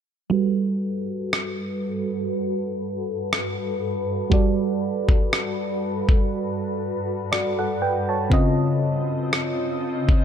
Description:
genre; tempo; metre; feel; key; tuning
contemporary R&B; 60 BPM; 4/4; swing 54% on 16ths; unclear; A4 = 440 Hz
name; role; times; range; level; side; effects
mellow FM electric piano; accompaniment; 0.3-10.2 s; Db3 to A5; -24 LUFS; right 2 dB; chorus, low-pass filter
granular cloud pad; sustained chords; 0.8-10.2 s; G2 to Eb5; -28 LUFS; left 2 dB; built-in reverb, sidechain pumping, low-pass filter
dusty soul sampler-style drum kit; drums; 1.3-10.2 s; kick drum, rim click; -21 LUFS; left 1 dB; none
room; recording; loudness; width
little or no reverb; none; -21 LUFS; side -8 dB against mid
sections
0.3-10.2 A section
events
filter sweep 0.3-10.2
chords
0.3 Gmaj9; 8.3 Dbmaj9

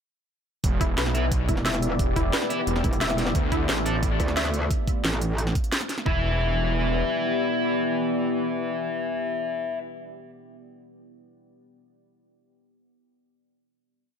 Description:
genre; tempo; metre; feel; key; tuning
dark technical drum and bass; 177 BPM; 4/4; straight; E phrygian; A4 = 440 Hz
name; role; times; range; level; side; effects
deep dark ambient pad; sustained chords; 1.2-9.5 s; A3 to D5; -30 LUFS; left 2 dB; chorus, built-in reverb, sidechain pumping
wide detuned saw bass; bass; 0.6-7.0 s; E1 to D2; -26 LUFS; equal; chorus, sidechain pumping
drum and bass drum kit; drums; 0.6-6.0 s; hi-hat, snare drum; -29 LUFS; right 1 dB; none
electronic kick drum; drums; 0.6-6.1 s; none; -25 LUFS; right 1 dB; none
wide unison pluck; arpeggios; 0.8-6.2 s; E4 to E5; -32 LUFS; left 1 dB; sidechain pumping, ping-pong delay
distorted electric guitar; stabs; 1.1-4.0, 6.1-9.8 s; D4 to E5; -29 LUFS; left 2 dB; distortion, vintage 12-bit sampler grit, ping-pong delay
metallic wobble bass; bass; 1.5-5.5 s; E1 to D2; -26 LUFS; right 1 dB; distortion, chorus, tube saturation
room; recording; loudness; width
light reverb; none; -22 LUFS; side -7 dB against mid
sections
0.6-6.1 drop; 6.1-8.8 final chord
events
drop 0.6-6.1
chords
0.6 Em7; 3.4 Dm; 6.1 Em7

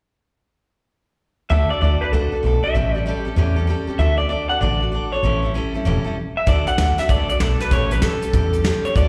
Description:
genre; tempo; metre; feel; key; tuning
rockabilly; 193 BPM; 4/4; swing 64% on 8ths; D major; A4 = 440 Hz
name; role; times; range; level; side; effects
electric guitar through a small old amp; melody; 1.5-9.1 s; A4 to F#5; -24 LUFS; equal; slapback echo, tape echo
picked steel-string acoustic guitar; accompaniment; 1.5-9.1 s; A2 to A4; -28 LUFS; equal; slapback echo
upright bass; bass; 1.5-9.1 s; E1 to E2; -22 LUFS; equal; none
soft brush drum kit; drums; 6.5-9.0 s; hi-hat, kick drum, snare drum; -24 LUFS; equal; none
room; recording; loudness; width
small room ambience; live gig heard through the venue's PA, recital hall reverb; -20 LUFS; mono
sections
1.5-6.5 A section; 6.5-9.1 B section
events
stop 6.2-6.5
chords
1.5 D; 2.7 A7; 4.0 D; 5.2 A7; 6.5 D; 7.7 A7

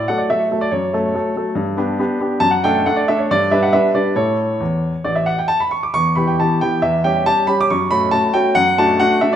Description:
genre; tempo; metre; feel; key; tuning
classical-period piano sonatina; 140 BPM; 4/4; rubato; D major; A4 = 440 Hz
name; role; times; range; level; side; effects
clear baby grand piano; solo; 0.0-9.4 s; A1 to D6; -14 LUFS; equal; none
room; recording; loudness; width
moderate recital hall reverb, RT60 1.4 s; none; -15 LUFS; side -9 dB against mid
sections
0.0-9.4 A section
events
none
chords
0.0 D; 0.7 F#m; 1.6 G; 2.4 D/F#; 3.3 G; 4.2 A; 5.9 Em; 6.8 C#dim/E; 7.7 F#m; 8.6 D/F#

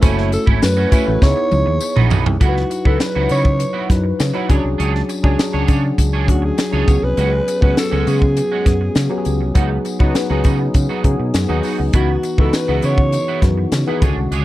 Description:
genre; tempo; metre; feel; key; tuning
polished 1980s jazz-funk pop; 101 BPM; 4/4; straight; C# minor; A4 = 440 Hz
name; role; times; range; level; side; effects
tine electric piano; accompaniment; 0.0-14.4 s; D3 to C#5; -21 LUFS; left 2 dB; analog chorus
electric guitar at the edge of break-up; riff; 0.0-14.4 s; E3 to C#5; -26 LUFS; right 8 dB; ensemble chorus
fingered electric bass; bass; 0.0-14.4 s; F#1 to C#3; -18 LUFS; equal; none
crisp fusion drum kit; drums; 0.0-14.4 s; hi-hat, kick drum, snare drum, toms; -16 LUFS; equal; none
tambourine; percussion; 0.0-14.4 s; none; -36 LUFS; left 7 dB; none
breathy alto saxophone; melody; 0.3-13.4 s; F#4 to C#5; -21 LUFS; equal; none
room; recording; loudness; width
studio ambience; dry, close 1970s-style studio recording; -14 LUFS; side -16 dB against mid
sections
0.0-2.4 A section; 2.4-14.4 B section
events
drum fill 1.2-2.4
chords
0.0 F#m7; 1.2 C#m9; 2.4 C#m11; 4.5 E13 (rootless); 6.9 Amaj13 (rootless); 9.6 G#m7/C#; 11.9 C#m11

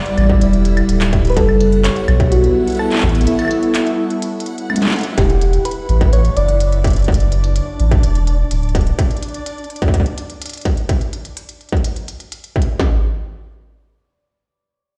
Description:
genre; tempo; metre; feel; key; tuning
IDM; 126 BPM; 4/4; straight; E dorian; A4 = 439 Hz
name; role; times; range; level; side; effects
soft struck synth lead; melody; 0.0-7.1 s; E4 to D5; -23 LUFS; equal; chorus, cassette tape, delay
phased analog pad; sustained chords; 0.0-5.2 s; G3 to D5; -22 LUFS; equal; phaser, chorus
backwards swelling texture; texture; 0.0-9.0 s; D4 to F#5; -32 LUFS; equal; built-in reverb
industrial drum kit; drums; 0.1-12.7 s; claves, handclaps, hi-hat, snare drum, toms; -26 LUFS; equal; delay
warm sub bass; bass; 0.2-8.9 s; D1 to B1; -16 LUFS; equal; none
industrial drum kit; drums; 0.3-12.9 s; kick drum, snare drum; -19 LUFS; equal; distortion
room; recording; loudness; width
light reverb, digital ambience; played on a big sound system in a bare room, stone room reverb; -16 LUFS; mono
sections
0.0-5.2 A section; 5.2-12.8 B section; 12.8-15.0 C section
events
break 3.3-5.2; drum fill 4.7-5.2; band accent 4.9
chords
0.0 Em7; 1.4 A13/F#; 3.3 A7; 5.2 Em7; 9.0 N.C.

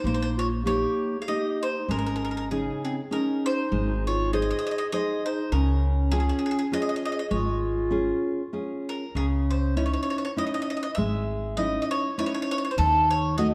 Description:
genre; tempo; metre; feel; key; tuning
italian folk, Italian serenade; 99 BPM; 3/4; swing 55% on 8ths, rubato; Db major, C# harmonic minor from 9.2 s; A4 = 439 Hz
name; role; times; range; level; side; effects
bowl-back mandolin; melody; 0.0-13.5 s; Ab4 to F5; -32 LUFS; equal; none
mellow clarinet; second line; 0.0-8.8 s; C4 to Ab4; -32 LUFS; equal; none
upright bass; bass; 0.0-13.5 s; Ab1 to D#2; -29 LUFS; equal; none
nylon-string guitar; accompaniment; 0.1-13.5 s; Db3 to C5; -31 LUFS; equal; none
room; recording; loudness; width
moderate recital hall reverb, RT60 1.6 s; dark, warm production; -26 LUFS; mono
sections
0.0-9.2 A section; 9.2-13.5 B section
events
none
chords
0.0 Eb; 1.9 Absus4; 3.7 Ab; 5.5 Db; 9.2 C#madd9; 12.8 D#dim

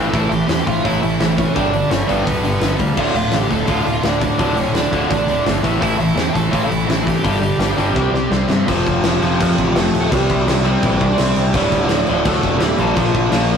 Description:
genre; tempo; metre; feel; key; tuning
punk rock; 168 BPM; 4/4; straight; D minor; A4 = 438 Hz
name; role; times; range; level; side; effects
cranked stack guitar; riff; 0.0-8.7 s; D2 to C4; -23 LUFS; equal; overdrive
overdriven semi-hollow guitar; riff; 0.0-13.6 s; D2 to C4; -19 LUFS; left 1 dB; none
growling picked electric bass; bass; 0.0-13.6 s; D1 to G2; -22 LUFS; equal; overdrive
smooth overdriven lead guitar; melody; 0.1-13.6 s; E3 to A5; -22 LUFS; right 2 dB; none
big rock drum kit; drums; 0.1-13.6 s; crash cymbal, hi-hat, kick drum, snare drum; -21 LUFS; equal; none
room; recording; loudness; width
moderate stone room reverb, RT60 1.2 s; rough rehearsal-room recording, warm saturation; -14 LUFS; side -7 dB against mid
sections
0.0-8.7 A section; 8.7-13.6 B section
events
drum fill 8.0-8.7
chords
0.0 A; 1.5 G; 3.0 Dm; 5.6 A5; 7.2 G5; 8.0 C5; 8.7 F; 10.1 C; 11.5 Dm; 12.8 Bb5

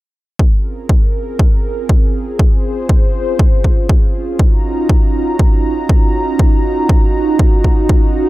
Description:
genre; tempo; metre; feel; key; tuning
deep house; 120 BPM; 4/4; swing 59% on 16ths; Bb minor; A4 = 438 Hz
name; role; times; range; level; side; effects
warm analog pad; sustained chords; 0.4-8.3 s; C4 to Bb5; -18 LUFS; right 1 dB; chorus, sidechain pumping
electronic kick drum; drums; 0.4-8.0 s; none; -11 LUFS; equal; none
room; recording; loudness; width
little or no reverb; none; -11 LUFS; side -17 dB against mid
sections
0.4-8.3 A section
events
none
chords
0.4 Bbm7; 4.4 Ebm7

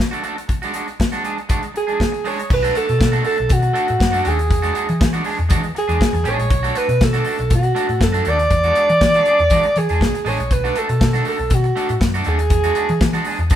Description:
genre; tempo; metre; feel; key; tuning
disco; 120 BPM; 4/4; straight; B dorian; A4 = 440 Hz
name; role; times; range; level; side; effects
electric guitar at the edge of break-up; accompaniment; 0.0-13.6 s; G#3 to G#4; -24 LUFS; right 3 dB; none
modern studio drum kit; drums; 0.0-13.6 s; crash cymbal, hi-hat, kick drum, snare drum; -19 LUFS; left 1 dB; none
breathy alto saxophone; melody; 1.8-13.2 s; F#4 to D5; -19 LUFS; right 2 dB; none
hollow-body short-scale picked electric bass; bass; 2.5-13.6 s; A1 to E3; -20 LUFS; left 1 dB; none
room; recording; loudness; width
moderate stone room reverb, RT60 1.1 s; band playing live in one room; -15 LUFS; side -11 dB against mid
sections
0.0-2.5 A section; 2.5-13.6 B section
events
none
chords
0.5 D(#11)/G#; 2.5 Bm7; 4.5 E9; 6.5 Bm7; 8.5 E9; 10.5 Bm7; 12.5 E9

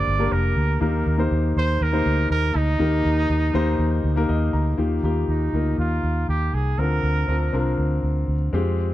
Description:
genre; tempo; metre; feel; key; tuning
piano-driven pop; 120 BPM; 4/4; straight; Eb major; A4 = 440 Hz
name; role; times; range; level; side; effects
warm trumpet; melody; 0.0-7.8 s; Eb4 to D5; -27 LUFS; right 4 dB; none
warm concert grand piano; accompaniment; 0.0-8.9 s; G2 to Bb5; -24 LUFS; left 3 dB; none
vintage muted fingered electric bass; bass; 0.0-8.9 s; F1 to F2; -22 LUFS; equal; none
room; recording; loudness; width
light reverb; dark, warm production; -19 LUFS; side -14 dB against mid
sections
0.0-4.8 A section; 4.8-8.9 B section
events
grand piano fill 4.0-4.8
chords
0.0 Gm; 0.8 Eb; 4.8 Ebadd9; 6.8 Bbadd9

